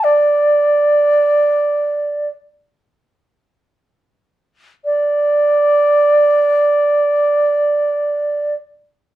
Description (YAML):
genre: chinese traditional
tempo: free time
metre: none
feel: none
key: unclear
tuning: A4 = 439 Hz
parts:
  - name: bright reedy xiao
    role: melody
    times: 0.0-8.5 s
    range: D5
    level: -12 LUFS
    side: right 1 dB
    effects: none
room: light reverb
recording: dark, warm production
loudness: -12 LUFS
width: side -14 dB against mid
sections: 0.0-4.8 A section; 4.8-8.7 B section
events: slowing down 0.0-4.8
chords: none